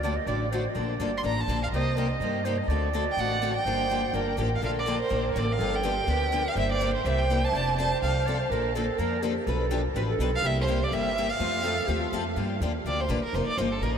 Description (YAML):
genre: acoustic string swing (jazz manouche)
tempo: 248 BPM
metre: 4/4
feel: swing 54% on 8ths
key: G minor, Bb major from 4.6 s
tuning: A4 = 440 Hz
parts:
  - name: warm clarinet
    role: second line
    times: 0.0-12.3 s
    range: F4 to Eb5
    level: -31 LUFS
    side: right 4 dB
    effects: none
  - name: picked steel-string acoustic guitar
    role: accompaniment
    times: 0.0-14.0 s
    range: B2 to B4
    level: -31 LUFS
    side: left 4 dB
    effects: lush chorus
  - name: upright bass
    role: bass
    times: 0.0-14.0 s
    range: F1 to G2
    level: -30 LUFS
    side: equal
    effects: none
  - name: warm violin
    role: melody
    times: 1.2-14.0 s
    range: A4 to C6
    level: -30 LUFS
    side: right 2 dB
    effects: diffuse ambient delay
room: wet huge ambient reverb, RT60 9.0 s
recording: dreamy mix soaked in reverb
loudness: -24 LUFS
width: side -7 dB against mid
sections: 0.0-4.6 A section; 4.6-12.4 B section; 12.4-14.0 C section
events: violin solo 12.4-14.0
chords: 0.0 D; 0.8 Bbmaj7; 1.7 Cm7; 2.7 D7; 3.7 Gm7; 4.6 Bbmaj7; 5.6 G7; 6.6 C7/G; 7.5 F6; 8.5 Bbmaj7; 9.5 G7/B; 10.4 C7; 11.4 F; 12.4 Gm7; 13.3 F7sus4